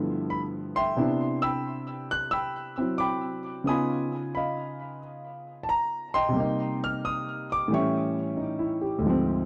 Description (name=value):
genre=solo jazz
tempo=89 BPM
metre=4/4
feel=swing 69% on 8ths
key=unclear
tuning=A4 = 440 Hz
part: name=warm concert grand piano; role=solo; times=0.0-9.5 s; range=D2 to F#6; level=-28 LUFS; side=equal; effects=tape echo
room=light reverb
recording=dry, close 1970s-style studio recording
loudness=-28 LUFS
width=mono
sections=0.0-9.5 A section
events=none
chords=0.0 G13; 1.0 Cmaj9; 3.7 Db9; 6.4 Cm7; 7.7 A7